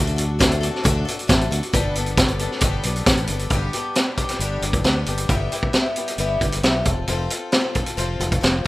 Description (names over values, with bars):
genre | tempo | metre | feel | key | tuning
folk rock and heartland rock | 134 BPM | 4/4 | straight | G major | A4 = 440 Hz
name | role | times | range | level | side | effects
picked twelve-string acoustic guitar | accompaniment | 0.0-8.7 s | G2 to A4 | -26 LUFS | left 3 dB | none
fingered electric bass | bass | 0.0-8.6 s | F1 to D2 | -24 LUFS | equal | none
vintage drum kit | drums | 0.1-8.5 s | hi-hat, kick drum, snare drum | -20 LUFS | equal | none
room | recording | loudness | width
studio ambience | rough home demo mix | -18 LUFS | side -18 dB against mid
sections
0.0-3.5 A section; 3.5-8.7 B section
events
none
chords
0.0 D; 1.7 Gadd9; 3.5 G; 5.3 Em/G; 6.9 F